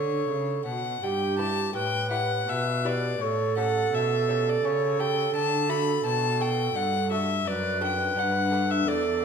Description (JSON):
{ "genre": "classical, baroque-style sonata movement with continuo", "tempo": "84 BPM", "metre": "3/4", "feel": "straight", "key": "D major", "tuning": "A4 = 440 Hz", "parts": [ { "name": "warm violin", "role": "melody", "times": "0.0-9.2 s", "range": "C#5 to B5", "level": "-28 LUFS", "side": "left 6 dB", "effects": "none" }, { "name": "bright baroque flute", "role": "second line", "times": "0.0-9.2 s", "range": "G4 to B4", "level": "-28 LUFS", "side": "right 6 dB", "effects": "none" }, { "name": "lute", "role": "accompaniment", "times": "0.0-9.2 s", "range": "E2 to B4", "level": "-34 LUFS", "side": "left 3 dB", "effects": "none" }, { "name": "rich cello", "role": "bass", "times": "0.0-9.2 s", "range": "E2 to D3", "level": "-31 LUFS", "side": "right 1 dB", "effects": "none" } ], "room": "wet recital hall reverb, RT60 1.3 s", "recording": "minimal, uncompressed stereo recording", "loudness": "-24 LUFS", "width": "side -6 dB against mid", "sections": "0.0-1.0 A section; 1.0-9.2 B section", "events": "none", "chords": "0.0 A; 1.0 Em/G; 3.2 A7; 5.3 D; 7.5 D/F#" }